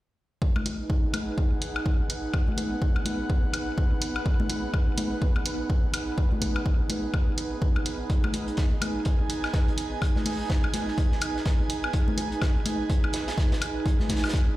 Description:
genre	minimal techno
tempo	125 BPM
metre	4/4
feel	swing 60% on 16ths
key	G# minor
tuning	A4 = 441 Hz
part	electronic kick drum	drums	0.4-14.5 s	none	-25 LUFS	equal	none
part	airy breathy pad	texture	0.4-14.6 s	D#4 to G#5	-32 LUFS	right 3 dB	chorus, sidechain pumping
part	bubbling stepped-filter texture	texture	0.4-14.6 s	B3 to B4	-40 LUFS	right 1 dB	chorus, built-in reverb, sidechain pumping
part	congas and woodblock	percussion	0.6-14.3 s	none	-32 LUFS	left 3 dB	overdrive, ping-pong delay
part	electronic hi-hat	drums	0.7-14.2 s	none	-33 LUFS	right 1 dB	none
part	crunchy breakbeat drum kit	drums	8.1-14.5 s	hi-hat, snare drum	-38 LUFS	equal	high-pass filter on hats, high-pass filter on snare, high-pass filter on room
room	little or no reverb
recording	played on a big sound system in a bare room, stone room reverb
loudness	-24 LUFS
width	side -16 dB against mid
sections	0.4-14.6 A section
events	none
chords	0.4 G#m7

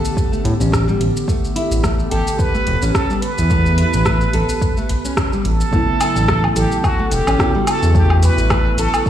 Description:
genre	organic downtempo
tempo	108 BPM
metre	4/4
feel	swing 56% on 16ths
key	A mixolydian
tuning	A4 = 441 Hz
part	warbly tape-like pad	sustained chords	0.0-9.1 s	D3 to C#6	-26 LUFS	equal	chorus, built-in reverb, sidechain pumping
part	nylon-string guitar	arpeggios	0.0-9.1 s	G3 to A4	-24 LUFS	left 1 dB	ping-pong delay
part	deep house drum kit	drums	0.1-9.1 s	hi-hat, rim click, shaker, woodblock	-24 LUFS	equal	small room ambience
part	electronic kick drum	drums	0.2-9.1 s	none	-20 LUFS	equal	overdrive, small room ambience
part	smooth synth bass	bass	0.4-8.9 s	E1 to A2	-16 LUFS	equal	sidechain pumping
part	udu	percussion	0.4-5.0 s	none	-24 LUFS	equal	none
part	trumpet with plunger mute	melody	2.1-9.1 s	F#4 to B4	-22 LUFS	right 2 dB	ping-pong delay
part	muted felt-like synth keys	accompaniment	5.7-9.1 s	C#3 to F#4	-22 LUFS	right 2 dB	chorus, sidechain pumping
room	light reverb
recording	played on a big sound system in a bare room, stone room reverb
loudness	-14 LUFS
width	side -11 dB against mid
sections	0.0-5.7 A section; 5.7-9.1 B section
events	band accent 5.2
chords	0.0 G; 5.7 A7

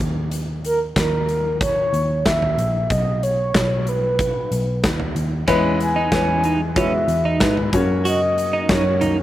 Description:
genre	piano-driven pop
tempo	93 BPM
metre	4/4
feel	straight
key	unclear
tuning	A4 = 440 Hz
part	vintage muted picked electric bass	bass	0.0-9.2 s	A#1 to G#2	-23 LUFS	equal	none
part	huge arena drum kit	drums	0.3-9.2 s	hi-hat, kick drum, snare drum, toms	-24 LUFS	equal	none
part	mellow horn-like synth lead	melody	0.7-9.2 s	A#4 to G#5	-21 LUFS	equal	chorus, slapback echo
part	clear concert grand piano	accompaniment	5.5-9.2 s	E3 to C#5	-22 LUFS	left 4 dB	slapback echo
part	lush unison pad	sustained chords	5.5-9.2 s	C#3 to G#4	-31 LUFS	equal	none
part	twelve-string electric guitar	riff	5.5-9.2 s	C#4 to F#4	-24 LUFS	right 4 dB	warbly pitch drift, slapback echo
room	little or no reverb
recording	none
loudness	-17 LUFS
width	side -14 dB against mid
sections	0.0-9.2 A section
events	none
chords	0.0 D#5; 2.9 Badd9; 5.5 E; 7.7 F#

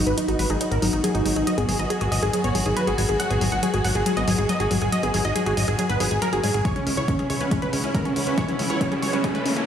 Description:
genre	uplifting trance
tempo	139 BPM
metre	4/4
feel	straight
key	G# minor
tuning	A4 = 440 Hz
part	supersaw stab	melody	0.0-9.7 s	C#4 to F#5	-24 LUFS	right 1 dB	sidechain pumping, low-pass filter, digital delay
part	warm chamber string section	sustained chords	0.0-9.7 s	C#3 to F#4	-31 LUFS	equal	sidechain pumping
part	plucky analog bass	bass	0.0-9.6 s	G#1 to G#2	-26 LUFS	equal	sidechain pumping
part	wide unison pluck	arpeggios	0.1-9.6 s	F#3 to B4	-28 LUFS	left 3 dB	sidechain pumping, digital delay
part	electronic hi-hat	drums	0.1-9.7 s	none	-31 LUFS	left 1 dB	overdrive
part	electronic kick drum	drums	6.7-9.3 s	none	-25 LUFS	equal	overdrive
part	riser	sound effects	7.6-9.7 s	none	-31 LUFS	equal	none
room	moderate digital room reverb, RT60 1.1 s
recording	played on a big sound system in a bare room, stone room reverb, high-pass filter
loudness	-20 LUFS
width	side -9 dB against mid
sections	0.0-9.7 A section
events	build-up 0.0-9.7; filter sweep on supersaw synth 0.0-9.7; filter sweep on synth arpeggio sound 0.0-9.7; drum fill 6.7-9.7; riser 7.6-9.7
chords	0.0 G#m7; 6.7 C#m7

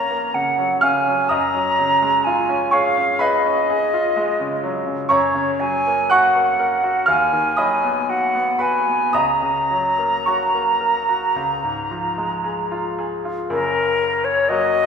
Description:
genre	classical, romantic duo for flute and grand piano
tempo	54-65 BPM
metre	4/4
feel	rubato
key	F# major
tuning	A4 = 441 Hz
part	silver concert flute	melody	0.0-14.9 s	A#4 to A#5	-19 LUFS	equal	none
part	bright grand piano	accompaniment	0.0-14.9 s	F#1 to F#6	-20 LUFS	equal	none
room	wet scoring stage reverb, RT60 1.6 s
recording	recorded in a church or concert hall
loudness	-16 LUFS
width	side -6 dB against mid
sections	0.0-13.5 A section; 13.5-14.9 A section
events	none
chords	0.0 F#; 1.3 C#7/F#; 5.1 F#; 7.1 B/D#; 9.2 F#/C#; 11.4 C#; 13.5 F#

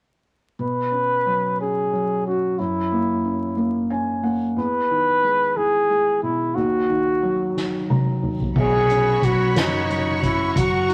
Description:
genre	six-eight pop ballad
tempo	60 BPM (dotted quarters)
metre	6/8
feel	straight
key	B major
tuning	A4 = 440 Hz
part	warm flugelhorn	melody	0.6-10.9 s	D#4 to B4	-23 LUFS	equal	none
part	felt-muted upright piano	accompaniment	0.6-10.9 s	D#2 to A#5	-27 LUFS	equal	none
part	soft-mallet drum kit	drums	7.6-10.9 s	crash cymbal, hi-hat, kick drum, snare drum, toms	-26 LUFS	equal	none
part	bright studio string section	sustained chords	8.6-10.9 s	F#4 to C#6	-28 LUFS	equal	none
part	fretless electric bass	bass	8.6-10.9 s	F#1 to B1	-28 LUFS	equal	none
room	moderate studio reverb, RT60 0.7 s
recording	vinyl crackle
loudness	-21 LUFS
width	mono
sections	0.6-8.6 A section; 8.6-10.9 B section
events	felt piano fill 3.6-4.6, 7.6-8.6; drum fill 7.6-8.6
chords	0.6 Bsus2; 2.6 F#7; 4.6 Emaj7; 6.6 D#m; 8.6 Bsus2

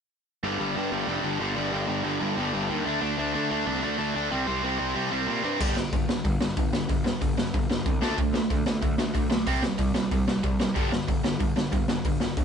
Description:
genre	punk rock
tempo	186 BPM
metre	4/4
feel	straight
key	unclear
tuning	A4 = 439 Hz
part	cranked stack guitar	riff	0.4-12.4 s	G2 to D4	-27 LUFS	equal	overdrive
part	fuzz picked electric bass	bass	0.4-12.4 s	F1 to D3	-32 LUFS	equal	overdrive
part	raw garage drum kit	drums	5.6-12.4 s	crash cymbal, hi-hat, kick drum, snare drum	-26 LUFS	equal	none
room	little or no reverb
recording	band playing live in one room, nothing above 10.9 kHz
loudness	-24 LUFS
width	side -7 dB against mid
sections	0.4-5.6 A section; 5.6-12.4 B section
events	none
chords	0.4 G5; 2.9 D5; 4.3 C5; 5.6 G5; 8.0 D5; 9.5 C5; 10.8 G5

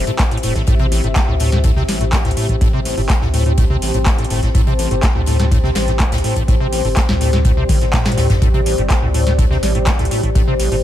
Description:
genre	acid house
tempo	124 BPM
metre	4/4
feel	straight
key	A minor pentatonic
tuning	A4 = 440 Hz
part	liquid acid bass	riff	0.0-10.8 s	A1 to A3	-20 LUFS	equal	chorus, overdrive, ping-pong delay
part	warm sub bass	bass	0.0-10.8 s	E1 to A2	-20 LUFS	equal	sidechain pumping
part	deep dark ambient pad	texture	0.0-10.8 s	G4 to A5	-22 LUFS	left 2 dB	chorus, built-in reverb, sidechain pumping
part	big rock drum kit	drums	0.1-10.7 s	hi-hat, snare drum	-32 LUFS	left 2 dB	high-pass filter on hats, high-pass filter on snare, high-pass filter on room
part	booming analog drum machine	drums	0.1-10.8 s	handclaps, hi-hat, snare drum, toms	-22 LUFS	equal	overdrive
part	electronic kick drum	drums	0.2-10.5 s	none	-16 LUFS	equal	overdrive
room	little or no reverb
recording	none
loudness	-13 LUFS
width	side -12 dB against mid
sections	0.0-10.8 A section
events	drum fill 7.7-8.4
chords	0.0 Am7

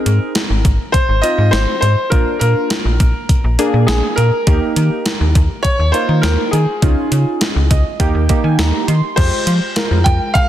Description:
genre	synth-pop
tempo	102 BPM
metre	4/4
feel	straight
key	Ab major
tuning	A4 = 441 Hz
part	clear concert grand piano	melody	0.0-10.5 s	Ab4 to G5	-19 LUFS	left 1 dB	digital delay
part	warm analog keys	accompaniment	0.0-10.5 s	Ab3 to C6	-21 LUFS	right 2 dB	chorus
part	slap-like FM bass	bass	0.1-10.2 s	Ab1 to F3	-14 LUFS	equal	none
part	clean 12-bit digital drum machine	drums	0.1-10.5 s	crash cymbal, hi-hat, kick drum, snare drum	-17 LUFS	equal	none
room	light reverb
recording	dense, heavily limited modern master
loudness	-12 LUFS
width	side -12 dB against mid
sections	0.0-9.2 A section; 9.2-10.5 B section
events	synth keys fill 7.4-9.2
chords	0.0 Ab; 2.1 Bb; 4.5 Eb; 6.8 Dbadd9; 8.0 Eb; 9.2 Fmadd9

